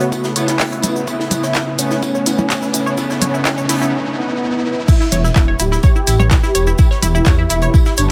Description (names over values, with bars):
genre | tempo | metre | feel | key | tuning
melodic techno | 126 BPM | 4/4 | straight | E dorian | A4 = 439 Hz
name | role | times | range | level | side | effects
expressive synth lead | melody | 0.0-8.1 s | B3 to G4 | -23 LUFS | equal | ensemble chorus, sidechain pumping, tape echo
deep dark ambient pad | sustained chords | 0.0-8.1 s | A3 to B5 | -31 LUFS | equal | none
tight sequenced synth | arpeggios | 0.0-8.1 s | E4 to C#5 | -26 LUFS | equal | chorus, sidechain pumping, delay
analog synth brass | stabs | 0.0-3.9 s | C#3 to B3 | -25 LUFS | equal | chorus, sidechain pumping, delay
modern studio drum kit | drums | 0.0-8.1 s | hi-hat, snare drum, tambourine | -32 LUFS | equal | sidechain pumping on hats, high-pass filter on hats, high-pass filter on snare, sidechain pumping on perc, high-pass filter on perc, high-pass filter on room
cabasa | percussion | 0.0-8.1 s | none | -32 LUFS | equal | none
riser | sound effects | 0.7-4.9 s | none | -30 LUFS | equal | none
electronic kick drum | drums | 0.1-7.8 s | none | -14 LUFS | equal | high-pass filter on kick
techno drum kit | drums | 0.4-8.1 s | crash cymbal, handclaps, hi-hat, percussion blips | -23 LUFS | equal | none
dark detuned saw bass | bass | 5.1-8.1 s | D1 to E2 | -18 LUFS | equal | sidechain pumping
room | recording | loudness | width
light reverb | none | -15 LUFS | mono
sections
0.0-4.9 A section; 4.9-8.1 B section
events
build-up 0.0-4.9; filter sweep on synth arpeggio sound 0.0-4.9; riser 0.7-4.9; drop 4.9-8.1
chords
0.0 Aadd9; 4.9 Em